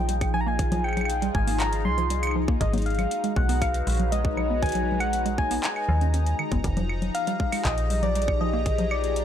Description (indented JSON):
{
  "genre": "IDM",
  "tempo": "119 BPM",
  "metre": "4/4",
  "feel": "straight",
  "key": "unclear",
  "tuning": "A4 = 440 Hz",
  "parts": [
    { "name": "soft struck synth lead", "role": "melody", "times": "0.0-9.2 s", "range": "D5 to C6", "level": "-29 LUFS", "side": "left 1 dB", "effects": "chorus, ping-pong delay" },
    { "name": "phased analog pad", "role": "sustained chords", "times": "0.0-9.2 s", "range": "F3 to Bb5", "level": "-30 LUFS", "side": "left 2 dB", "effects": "phaser, chorus" },
    { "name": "warbly dusty pluck", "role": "arpeggios", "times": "0.0-8.9 s", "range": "Eb3 to Db4", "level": "-32 LUFS", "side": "right 4 dB", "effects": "chorus, digital delay" },
    { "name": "metallic FM bass", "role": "bass", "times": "0.0-9.2 s", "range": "F1 to Eb2", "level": "-26 LUFS", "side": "equal", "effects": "none" },
    { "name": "booming analog drum machine", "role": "drums", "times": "0.1-9.2 s", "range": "claves, congas, handclaps, hi-hat", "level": "-31 LUFS", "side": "left 2 dB", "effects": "none" },
    { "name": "electronic kick drum", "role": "drums", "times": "0.2-8.8 s", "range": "none", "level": "-27 LUFS", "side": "equal", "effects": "none" }
  ],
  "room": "light reverb",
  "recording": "none",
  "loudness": "-22 LUFS",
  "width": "side -9 dB against mid",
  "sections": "0.0-9.2 A section",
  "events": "none",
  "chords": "0.0 Fm11; 2.6 Abm11; 6.6 Fm11"
}